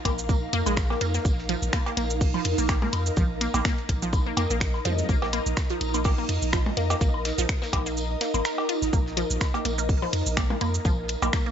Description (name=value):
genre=minimal techno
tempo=125 BPM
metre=4/4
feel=swing 55% on 16ths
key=unclear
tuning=A4 = 440 Hz
part: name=ethereal airy pad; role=texture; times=0.0-11.5 s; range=Eb4 to F5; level=-31 LUFS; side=right 1 dB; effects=ensemble chorus, built-in reverb, phaser, sidechain pumping
part: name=resonant blip pluck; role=riff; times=0.1-11.5 s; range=F3 to Bb4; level=-31 LUFS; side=right 1 dB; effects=phaser, sidechain pumping, dub echo
part: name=punchy sub bass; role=bass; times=0.1-11.3 s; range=Ab1 to F2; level=-29 LUFS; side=equal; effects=sidechain pumping
part: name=damped 70s drum kit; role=drums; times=0.1-11.5 s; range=hi-hat, snare drum, tambourine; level=-40 LUFS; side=right 2 dB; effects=sidechain pumping on hats, high-pass filter on hats, high-pass filter on snare, sidechain pumping on perc, high-pass filter on perc, high-pass filter on room
part: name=electronic kick drum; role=drums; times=0.1-11.4 s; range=none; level=-25 LUFS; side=equal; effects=none
part: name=house drum kit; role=drums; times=0.1-11.4 s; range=cabasa, finger snaps, hi-hat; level=-30 LUFS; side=equal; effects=none
part: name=cowbell, woodblock and percussion blips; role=percussion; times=0.1-11.3 s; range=none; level=-32 LUFS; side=left 2 dB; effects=none
part: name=zap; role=sound effects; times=4.9-5.0 s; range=none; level=-35 LUFS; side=equal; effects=none
part: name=bubbling stepped-filter texture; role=texture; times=9.4-11.5 s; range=Bb4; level=-41 LUFS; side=right 6 dB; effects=chorus, built-in reverb, sidechain pumping
room=digital ambience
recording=nothing above 7.7 kHz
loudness=-23 LUFS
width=side -9 dB against mid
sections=0.0-11.5 A section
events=kick drops out 8.0-8.9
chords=0.0 Bbsus4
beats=0.29 0.77 | 1.25 1.73 2.21 2.69 | 3.17 3.65 4.13 4.61 | 5.09 5.57 6.05 6.53 | 7.01 7.49 7.97 8.45 | 8.93 9.41 9.89 10.37 | 10.85 11.33